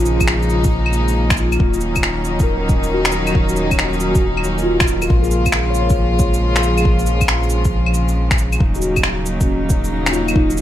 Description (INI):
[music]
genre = future garage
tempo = 137 BPM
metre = 4/4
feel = swing 66% on 16ths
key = Eb minor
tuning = A4 = 440 Hz
[part]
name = mellow tine electric piano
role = accompaniment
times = 0.0-10.6 s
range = Bb3 to Db5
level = -22 LUFS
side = left 1 dB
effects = ensemble chorus, sidechain pumping, ping-pong delay
[part]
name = rich chamber string section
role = sustained chords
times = 0.0-10.6 s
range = Db3 to F4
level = -21 LUFS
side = equal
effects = sidechain pumping
[part]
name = soft dub sub bass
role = bass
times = 0.0-10.6 s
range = Eb1 to Bb1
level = -20 LUFS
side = equal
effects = tube saturation, sidechain pumping
[part]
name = electronic cabasa, shaker, claves and finger snaps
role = drums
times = 0.1-10.6 s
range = none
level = -21 LUFS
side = left 1 dB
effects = none
[part]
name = electronic kick drum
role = drums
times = 0.2-10.5 s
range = none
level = -18 LUFS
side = equal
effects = none
[sound]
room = light reverb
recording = bright 1980s-style digital production, vinyl crackle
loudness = -14 LUFS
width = side -12 dB against mid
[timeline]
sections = 0.0-10.6 A section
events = none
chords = 0.0 Bbm7; 1.6 Ebm7; 5.1 Bbm7; 8.6 Ebm7